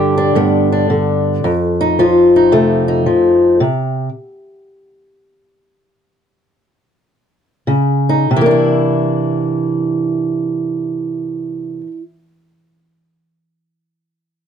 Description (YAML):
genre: blues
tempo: 91-110 BPM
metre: 4/4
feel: swing 66% on 8ths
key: C mixolydian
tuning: A4 = 440 Hz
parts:
  - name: fingerpicked old ladder-braced acoustic guitar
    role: solo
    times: 0.0-4.1, 7.7-12.0 s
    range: F2 to G4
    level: -12 LUFS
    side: equal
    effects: none
room: moderate booth ambience, RT60 0.2 s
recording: dark, warm production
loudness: -12 LUFS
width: side -8 dB against mid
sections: 0.0-8.3 A section; 8.3-13.6 B section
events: slowing down 3.6-8.3; stop 3.6-7.7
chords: 0.0 G; 1.4 F7; 3.6 N.C.; 7.7 Dbsus2; 8.3 C9